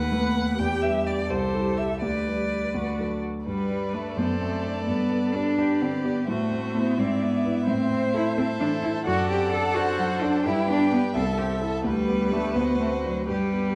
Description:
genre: quick classical-period movement for piano quintet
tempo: 85 BPM (dotted quarters)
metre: 6/8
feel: straight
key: G major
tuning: A4 = 440 Hz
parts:
  - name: clear violin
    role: melody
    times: 0.0-13.8 s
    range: E4 to G5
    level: -34 LUFS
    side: equal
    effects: none
  - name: clear cello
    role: second line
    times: 0.0-13.8 s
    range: F#3 to B4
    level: -29 LUFS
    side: equal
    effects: none
  - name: clear concert grand piano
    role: accompaniment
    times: 0.0-13.8 s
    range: C2 to D5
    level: -30 LUFS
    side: equal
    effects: none
  - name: rich viola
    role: accompaniment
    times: 0.0-13.8 s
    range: F#4 to D5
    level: -36 LUFS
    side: equal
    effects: none
  - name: clear violin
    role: second line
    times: 3.5-13.8 s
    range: B4 to G5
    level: -36 LUFS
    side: equal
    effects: none
room: wet recital hall reverb, RT60 1.5 s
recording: dark, warm production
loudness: -25 LUFS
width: mono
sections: 0.0-3.5 A section; 3.5-13.8 B section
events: none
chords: 0.0 B7/D#; 0.6 Em7; 1.3 Am7/C; 2.0 G/D; 2.7 D; 3.5 G; 4.2 D7/F#; 4.9 G; 6.3 Am; 7.0 E7/G#; 7.7 Am; 9.1 D7/F#; 10.5 G; 11.2 Am/C; 11.9 G/D; 12.6 D7

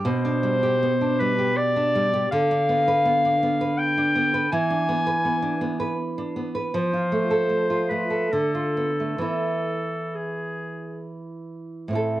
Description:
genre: romantic duo for clarinet and classical guitar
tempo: 63-83 BPM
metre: 3/4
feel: rubato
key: unclear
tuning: A4 = 442 Hz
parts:
  - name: nylon-string guitar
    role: accompaniment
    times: 0.0-12.2 s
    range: A2 to B4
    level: -24 LUFS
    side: right 1 dB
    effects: none
  - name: clear clarinet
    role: melody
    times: 0.1-12.2 s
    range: C4 to G#5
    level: -24 LUFS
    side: left 1 dB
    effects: cassette tape
room: moderate spring reverb, RT60 1.0 s, small room ambience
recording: home recording on cassette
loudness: -21 LUFS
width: side -14 dB against mid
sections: 0.0-12.0 A section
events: none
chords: 0.1 G/B; 2.3 Bdim/D; 4.5 E7; 6.7 F; 8.3 Bm7b5/D; 9.2 E

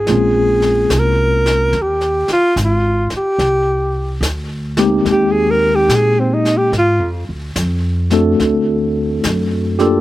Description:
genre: jazz ballad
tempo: 72 BPM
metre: 4/4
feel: swing 66% on 8ths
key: unclear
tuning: A4 = 440 Hz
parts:
  - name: breathy alto saxophone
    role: melody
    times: 0.0-7.1 s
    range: C4 to Bb4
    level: -15 LUFS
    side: equal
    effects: none
  - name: tine electric piano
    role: accompaniment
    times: 0.0-10.0 s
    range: Ab3 to A4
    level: -16 LUFS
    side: left 1 dB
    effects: medium stereo tremolo, slapback echo
  - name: upright bass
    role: bass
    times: 0.0-10.0 s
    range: Ab1 to Bb2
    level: -19 LUFS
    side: equal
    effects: none
  - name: jazz brush drum kit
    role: drums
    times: 0.1-10.0 s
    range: brushed snare drum, hi-hat, snare drum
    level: -25 LUFS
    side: left 1 dB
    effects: slapback echo
room: little or no reverb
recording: recorded outdoors, with no room sound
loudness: -13 LUFS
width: side -15 dB against mid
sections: 0.0-10.0 A section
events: alto saxophone solo 0.0-10.0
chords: 0.1 Bbm9; 1.7 Fm9; 3.4 Abmaj9; 6.7 Dm7b5; 8.4 D7

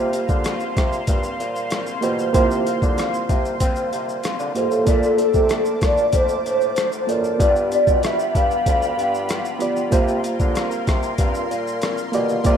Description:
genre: indie pop, bedroom pop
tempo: 95 BPM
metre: 4/4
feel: straight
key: unclear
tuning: A4 = 438 Hz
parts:
  - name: electric guitar through a small old amp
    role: accompaniment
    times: 0.0-12.6 s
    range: G2 to F4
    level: -30 LUFS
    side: left 3 dB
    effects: ensemble chorus, vibrato effect
  - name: reed electric piano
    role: accompaniment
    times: 0.0-12.6 s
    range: Bb3 to D5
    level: -24 LUFS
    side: right 3 dB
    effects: fast tremolo
  - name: phased analog pad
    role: sustained chords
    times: 0.0-12.6 s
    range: F4 to D6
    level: -28 LUFS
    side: equal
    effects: phaser, chorus
  - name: mellow bassoon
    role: bass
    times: 0.0-12.6 s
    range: D2 to C4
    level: -26 LUFS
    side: left 1 dB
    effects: none
  - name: boom bap sampler-style drum kit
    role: drums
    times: 0.1-12.6 s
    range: hi-hat, kick drum, rim click, shaker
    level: -22 LUFS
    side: equal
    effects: overdrive
  - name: hollow clarinet-like synth lead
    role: melody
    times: 4.6-9.6 s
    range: A4 to F5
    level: -19 LUFS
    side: equal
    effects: ensemble chorus, slapback echo
room: digital ambience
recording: rough home demo mix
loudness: -18 LUFS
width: side -8 dB against mid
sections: 0.0-12.6 A section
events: none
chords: 0.0 C7sus4; 4.9 Bbmaj7; 7.4 G7; 9.9 C7sus4

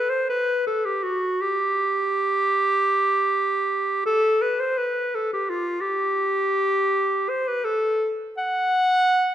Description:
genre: classical, free, expressive piece for unaccompanied clarinet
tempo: 82 BPM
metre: 3/4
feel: uneven beats, rubato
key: G major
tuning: A4 = 439 Hz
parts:
  - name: clear clarinet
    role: solo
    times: 0.0-9.3 s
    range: F4 to F#5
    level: -20 LUFS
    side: equal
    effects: none
room: wet concert hall reverb, RT60 1.7 s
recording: nothing above 10.5 kHz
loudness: -20 LUFS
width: side -11 dB against mid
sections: 0.0-9.3 A section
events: none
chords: none

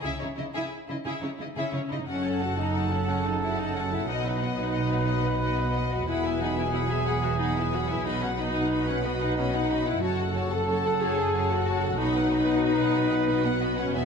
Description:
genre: cinematic, heroic adventure film score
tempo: 121 BPM (dotted quarters)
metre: 12/8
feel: straight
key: F# dorian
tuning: A4 = 440 Hz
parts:
  - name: rich studio violin section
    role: melody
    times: 0.0-14.1 s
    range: C#5 to B5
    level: -36 LUFS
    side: left 4 dB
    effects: none
  - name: warm symphonic violin section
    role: second line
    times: 0.0-14.1 s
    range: D#4 to A5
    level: -35 LUFS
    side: left 4 dB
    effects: none
  - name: rich symphonic viola section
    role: accompaniment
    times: 0.0-14.1 s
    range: B3 to A4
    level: -33 LUFS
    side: right 1 dB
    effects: none
  - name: warm symphonic cello section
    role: bass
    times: 0.0-14.1 s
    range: E2 to C#3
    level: -32 LUFS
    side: right 3 dB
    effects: none
  - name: warm symphonic double bass section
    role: bass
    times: 0.0-14.1 s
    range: E1 to C#2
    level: -33 LUFS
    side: right 3 dB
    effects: none
  - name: warm French horn section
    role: sustained chords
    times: 0.4-14.1 s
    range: E3 to A4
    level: -30 LUFS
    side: left 4 dB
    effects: none
  - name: clear trombone section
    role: sustained chords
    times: 2.1-14.1 s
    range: B2 to F#3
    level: -34 LUFS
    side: right 2 dB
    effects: none
  - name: warm trumpet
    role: stabs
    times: 2.1-14.1 s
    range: G#4 to B4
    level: -32 LUFS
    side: right 2 dB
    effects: none
room: wet scoring stage reverb, RT60 1.9 s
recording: faint mains hum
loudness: -24 LUFS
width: side -6 dB against mid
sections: 0.0-2.1 A section; 2.1-14.1 B section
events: build-up 0.0-2.1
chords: 0.0 C#madd9; 2.1 F#m; 4.1 B; 6.1 Eadd9; 8.1 B; 10.0 F#m; 12.0 B

